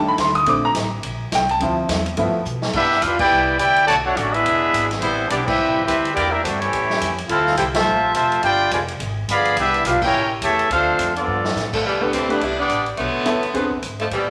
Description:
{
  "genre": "jazz, big band swing",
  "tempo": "211 BPM",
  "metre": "4/4",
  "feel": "swing 60% on 8ths",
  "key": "C major",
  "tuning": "A4 = 440 Hz",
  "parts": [
    { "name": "clear baby grand piano", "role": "accompaniment", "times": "0.0-2.4, 12.0-13.7 s", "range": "Eb3 to Eb6", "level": "-22 LUFS", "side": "equal", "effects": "none" },
    { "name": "upright bass", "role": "bass", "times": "0.0-14.3 s", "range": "E1 to B2", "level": "-32 LUFS", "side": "equal", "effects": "none" },
    { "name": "swinging big-band drum kit", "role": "drums", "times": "0.2-14.2 s", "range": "crash cymbal, hi-hat, kick drum, ride cymbal, snare drum", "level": "-30 LUFS", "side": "equal", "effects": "none" },
    { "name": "clear trumpet section", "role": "melody", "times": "2.7-11.7 s", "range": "G3 to B5", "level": "-20 LUFS", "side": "equal", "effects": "none" },
    { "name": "bright trombone section", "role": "second line", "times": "2.7-11.7 s", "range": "C3 to G4", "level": "-27 LUFS", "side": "equal", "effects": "none" },
    { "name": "edgy saxophone section", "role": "melody", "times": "11.7-14.3 s", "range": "B2 to E4", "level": "-23 LUFS", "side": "equal", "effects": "none" }
  ],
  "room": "wet large studio reverb, RT60 1.2 s",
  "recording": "none",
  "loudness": "-19 LUFS",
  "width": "mono",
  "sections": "0.0-2.7 A section; 2.7-11.8 B section; 11.8-14.3 C section",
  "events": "grand piano solo 0.0-2.7; drum fill 2.5, 11.3; band accent 3.2, 5.4, 7.7, 10.0",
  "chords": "0.5 Bbmaj9; 1.6 Dm9; 2.2 G13; 2.7 Cmaj9; 3.9 Bm9; 4.5 E7; 5.0 Am9; 6.2 Em7b5; 6.7 A7b13; 7.3 Dm9; 8.4 G7b9; 9.6 Cmaj9; 10.1 A7b9; 10.7 Dm7; 11.3 G9; 11.8 Cmaj9; 13.0 Bm9; 13.5 E7b13",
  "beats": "0.18 | 0.47 0.75 1.04 1.32 | 1.61 1.89 2.18 2.46 | 2.75 3.03 3.31 3.60 | 3.88 4.17 4.45 4.74 | 5.02 5.31 5.59 5.88 | 6.16 6.44 6.73 7.01 | 7.30 7.58 7.86 8.15 | 8.43 8.72 9.00 9.28 | 9.57 9.85 10.14 10.42 | 10.70 10.99 11.27 11.56 | 11.84 12.12 12.41 12.69 | 12.98 13.26 13.55 13.83 | 14.12"
}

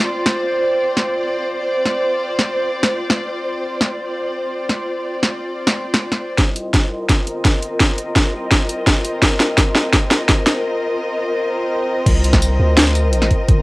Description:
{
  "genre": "half-time drum and bass",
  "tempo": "169 BPM",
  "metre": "4/4",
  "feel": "half-time",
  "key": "C minor",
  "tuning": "A4 = 439 Hz",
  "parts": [
    { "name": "warm chamber string section", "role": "sustained chords", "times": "0.0-13.6 s", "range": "C4 to Eb5", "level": "-20 LUFS", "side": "equal", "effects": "sidechain pumping, low-pass filter, cassette tape" },
    { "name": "drum and bass drum kit", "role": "drums", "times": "0.3-13.6 s", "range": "crash cymbal, hi-hat, snare drum, tambourine", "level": "-16 LUFS", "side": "equal", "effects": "overdrive" },
    { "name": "long sustained 808-style bass", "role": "bass", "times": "6.4-13.6 s", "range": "G1 to D2", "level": "-21 LUFS", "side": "equal", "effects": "high-pass filter" },
    { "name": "electronic kick drum", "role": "drums", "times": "6.4-13.6 s", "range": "none", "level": "-16 LUFS", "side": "equal", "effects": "overdrive" }
  ],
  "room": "moderate studio reverb, RT60 0.6 s",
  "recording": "home recording on cassette",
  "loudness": "-15 LUFS",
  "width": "side -21 dB against mid",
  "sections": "0.0-6.4 A section; 6.4-12.1 B section; 12.1-13.6 C section",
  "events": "build-up 6.4-12.1; drum fill 6.4-10.6; filter sweep on string section 6.4-12.1; break 10.6-12.1; drop 12.1-13.6",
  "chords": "0.0 Csus2; 6.4 Cm; 12.1 Cmadd9",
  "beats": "0.35 | 0.70 1.06 1.41 1.77 | 2.12 2.48 2.83 3.19 | 3.54 3.90 4.25 4.61 | 4.96 5.32 5.67 6.03 | 6.38 6.74 7.09 7.45 | 7.80 8.16 8.51 8.87 | 9.22 9.58 9.93 10.29 | 10.64 11.00 11.35 11.71 | 12.06 12.42 12.77 13.13 | 13.48"
}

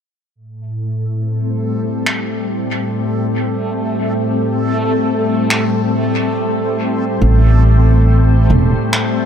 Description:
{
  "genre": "ambient dub",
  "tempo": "70 BPM",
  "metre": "4/4",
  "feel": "swing 58% on 16ths",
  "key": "A minor",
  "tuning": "A4 = 440 Hz",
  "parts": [
    { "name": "soft additive organ-like pad", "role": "sustained chords", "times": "0.6-9.3 s", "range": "A2 to C4", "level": "-17 LUFS", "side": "left 1 dB", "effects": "ensemble chorus, built-in reverb" },
    { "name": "backwards swelling texture", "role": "texture", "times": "1.6-9.3 s", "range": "A3 to A4", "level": "-22 LUFS", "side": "equal", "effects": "built-in reverb" },
    { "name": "finger snaps", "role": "drums", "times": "2.1-9.1 s", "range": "none", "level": "-20 LUFS", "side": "equal", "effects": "dub echo" },
    { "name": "upright bass", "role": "bass", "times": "7.2-8.7 s", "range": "E1 to A1", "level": "-10 LUFS", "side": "equal", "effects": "none" }
  ],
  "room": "light reverb, small room ambience",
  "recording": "echo-heavy mix",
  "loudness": "-13 LUFS",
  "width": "side -8 dB against mid",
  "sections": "0.4-9.3 A section",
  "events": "none",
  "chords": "0.4 Am7",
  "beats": "| 0.36 1.22 2.07 2.93 | 3.79 4.64 5.50 6.36 | 7.21 8.07 8.93"
}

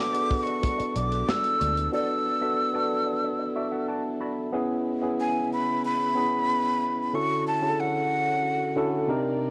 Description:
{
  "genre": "lush 1970s-style soul",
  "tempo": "92 BPM",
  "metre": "4/4",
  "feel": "straight",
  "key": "unclear",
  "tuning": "A4 = 441 Hz",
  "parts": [
    { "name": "breathy jazz flute", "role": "melody", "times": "0.0-9.1 s", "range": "F#5 to E6", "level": "-29 LUFS", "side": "equal", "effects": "cassette tape" },
    { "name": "tine electric piano", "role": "accompaniment", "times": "0.0-9.5 s", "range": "C3 to B5", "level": "-30 LUFS", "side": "equal", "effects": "cassette tape" },
    { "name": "warm studio string section", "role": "sustained chords", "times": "0.0-9.5 s", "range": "C3 to D5", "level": "-43 LUFS", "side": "equal", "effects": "cassette tape" },
    { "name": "mellow electric guitar", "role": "riff", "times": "0.1-4.4 s", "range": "F#4 to E5", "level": "-40 LUFS", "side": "equal", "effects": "wah, cassette tape" },
    { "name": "tight funk drum kit", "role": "drums", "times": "0.1-1.9 s", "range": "hi-hat, kick drum, snare drum", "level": "-31 LUFS", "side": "equal", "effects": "cassette tape" },
    { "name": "congas", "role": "percussion", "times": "0.6-1.8 s", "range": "none", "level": "-39 LUFS", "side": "equal", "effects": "none" },
    { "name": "vintage muted fingered electric bass", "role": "bass", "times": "0.8-1.9 s", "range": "B1 to D2", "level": "-32 LUFS", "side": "equal", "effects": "tube saturation" }
  ],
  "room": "light reverb, small room ambience",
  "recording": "home recording on cassette",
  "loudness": "-26 LUFS",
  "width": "mono",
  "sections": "0.0-4.5 A section; 4.5-9.5 B section",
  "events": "tine electric piano fill 3.2-4.5",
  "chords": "0.0 E9sus4; 4.5 C#m7; 7.1 Dmaj7",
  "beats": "0.63 1.28 | 1.94 2.59 3.24 3.89 | 4.54 5.19 5.84 6.49 | 7.14 7.79 8.44 9.09"
}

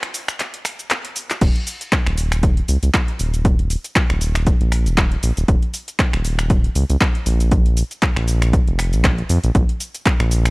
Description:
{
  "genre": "deep house",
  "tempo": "118 BPM",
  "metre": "4/4",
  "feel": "swing 56% on 16ths",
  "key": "unclear",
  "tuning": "A4 = 435 Hz",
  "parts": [
    { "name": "deep house drum kit", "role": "drums", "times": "0.0-10.5 s", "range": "crash cymbal, finger snaps, handclaps, hi-hat, shaker", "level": "-23 LUFS", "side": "equal", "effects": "small room reverb" },
    { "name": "round analog bass", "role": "bass", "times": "1.4-10.5 s", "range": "Eb1 to F2", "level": "-18 LUFS", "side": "equal", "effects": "sidechain pumping" },
    { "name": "electronic kick drum", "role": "drums", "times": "1.4-10.2 s", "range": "none", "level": "-17 LUFS", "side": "equal", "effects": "small room reverb" }
  ],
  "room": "little or no reverb",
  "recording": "dry, gritty hardware recording, vinyl crackle",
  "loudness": "-16 LUFS",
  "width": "side -27 dB against mid",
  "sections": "0.0-1.4 A section; 1.4-10.5 B section",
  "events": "break 0.0-1.4; drum fill 0.9-1.4; drop 1.4-10.5",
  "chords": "none",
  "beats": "0.40 0.91 | 1.42 1.92 2.43 2.94 | 3.45 3.96 4.46 4.97 | 5.48 5.99 6.50 7.01 | 7.52 8.03 8.53 9.04 | 9.55 10.06"
}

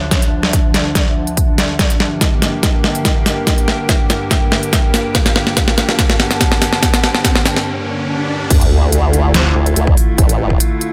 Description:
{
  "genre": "heavy wobble dubstep",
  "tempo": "143 BPM",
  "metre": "4/4",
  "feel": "half-time",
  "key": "D minor",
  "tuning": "A4 = 440 Hz",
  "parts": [
    { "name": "evolving wavetable pad", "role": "sustained chords", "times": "0.0-10.9 s", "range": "D2 to G4", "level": "-25 LUFS", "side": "equal", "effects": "chorus, built-in reverb, sidechain pumping" },
    { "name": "warbly tape-like pad", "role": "texture", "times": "0.0-7.7 s", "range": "F3 to A5", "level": "-26 LUFS", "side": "equal", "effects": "chorus, built-in reverb, sidechain pumping" },
    { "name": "dubstep drum kit", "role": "drums", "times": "0.1-10.9 s", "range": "crash cymbal, hi-hat, snare drum", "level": "-18 LUFS", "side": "equal", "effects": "none" },
    { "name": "electronic kick drum", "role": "drums", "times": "0.1-10.6 s", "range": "none", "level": "-17 LUFS", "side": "equal", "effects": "none" },
    { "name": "riser, swell and sub drop", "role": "sound effects", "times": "4.9-10.2 s", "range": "none", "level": "-26 LUFS", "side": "equal", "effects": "none" },
    { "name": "formant-sweep wobble bass", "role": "bass", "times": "8.5-10.6 s", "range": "A1 to D2", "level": "-16 LUFS", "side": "equal", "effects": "chorus, overdrive" },
    { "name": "snarling distorted saw bass", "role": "bass", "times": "9.3-9.5 s", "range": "D2", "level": "-17 LUFS", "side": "equal", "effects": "distortion, overdrive" }
  ],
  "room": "light reverb, digital ambience",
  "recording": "none",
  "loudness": "-14 LUFS",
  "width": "mono",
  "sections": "0.0-8.5 A section; 8.5-10.9 B section",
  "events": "build-up 0.0-8.5; drum fill 0.0-7.7; break 7.7-8.5; swell 7.7-8.5; drop 8.5-10.9; impact 8.5-10.2",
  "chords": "0.0 Dmadd9; 1.8 Gm; 8.5 Dmadd9",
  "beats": "| 0.11 0.53 0.95 1.37 | 1.79 2.21 2.63 3.05 | 3.47 3.89 4.31 4.73 | 5.15 5.57 5.99 6.41 | 6.83 7.25 7.67 8.09 | 8.51 8.93 9.34 9.76 | 10.18 10.60"
}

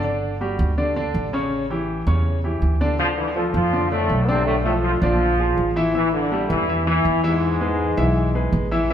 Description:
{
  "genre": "latin",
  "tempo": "163 BPM",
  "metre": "4/4",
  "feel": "straight",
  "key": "unclear",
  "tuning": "A4 = 440 Hz",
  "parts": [
    { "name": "clear concert grand piano", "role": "accompaniment", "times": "0.0-8.9 s", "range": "C#3 to E5", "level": "-23 LUFS", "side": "left 1 dB", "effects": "none" },
    { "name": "upright bass", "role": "bass", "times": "0.0-8.9 s", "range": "G1 to F2", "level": "-23 LUFS", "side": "right 1 dB", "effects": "none" },
    { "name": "bright trombone section", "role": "melody", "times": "3.0-8.9 s", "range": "G#2 to F4", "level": "-22 LUFS", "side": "equal", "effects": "tape echo" }
  ],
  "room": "wet large studio reverb, RT60 1.4 s",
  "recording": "heard from further back in the room",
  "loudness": "-18 LUFS",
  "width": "side -9 dB against mid",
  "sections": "0.0-8.9 A section",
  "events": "none",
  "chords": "0.0 G5; 1.5 A7; 3.0 Dm7; 4.5 Bm7b5; 5.2 Bb7#11; 5.9 A5; 7.4 E",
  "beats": "| 0.04 0.41 0.78 1.15 | 1.52 1.89 2.26 2.62 | 2.99 3.36 3.73 4.10 | 4.47 4.84 5.21 5.58 | 5.94 6.31 6.68 7.05 | 7.42 7.79 8.16 8.53 | 8.90"
}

